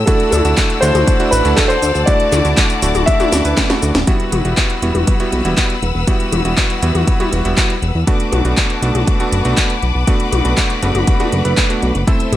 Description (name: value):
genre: italo disco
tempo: 120 BPM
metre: 4/4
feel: straight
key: E minor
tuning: A4 = 440 Hz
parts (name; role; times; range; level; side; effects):
- bright studio string section; sustained chords; 0.0-12.4 s; B4 to E6; -23 LUFS; left 4 dB; none
- fat analog bass; bass; 0.0-12.4 s; D1 to E2; -18 LUFS; equal; tube saturation
- warm grand piano; melody; 0.1-3.8 s; A4 to E5; -17 LUFS; equal; ping-pong delay
- bright electric grand piano; stabs; 0.1-12.4 s; G3 to B4; -20 LUFS; right 2 dB; ping-pong delay
- electronic kick drum; drums; 0.1-12.2 s; none; -16 LUFS; equal; studio reverb
- house drum kit; drums; 0.1-12.4 s; cabasa, handclaps, hi-hat, snare drum, toms; -19 LUFS; left 2 dB; studio reverb
room: light reverb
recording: none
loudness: -12 LUFS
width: side -13 dB against mid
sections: 0.0-4.1 A section; 4.1-12.4 B section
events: drum fill 3.3-4.1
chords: 0.1 Dadd9; 4.1 Emadd9; 8.1 Bm7